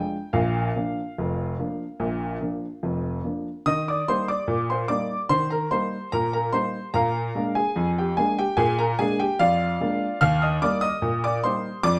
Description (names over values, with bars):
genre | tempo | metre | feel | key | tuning
ragtime piano | 73 BPM | 2/4 | straight | Eb major | A4 = 439 Hz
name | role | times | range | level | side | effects
clear upright piano | solo | 0.0-12.0 s | F1 to F6 | -24 LUFS | equal | none
room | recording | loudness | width
moderate studio reverb, RT60 0.8 s | dark, warm production | -25 LUFS | mono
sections
0.0-3.7 A section; 3.7-12.0 B section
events
none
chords
0.3 Bb; 3.7 Eb; 6.9 Bb7; 10.2 Eb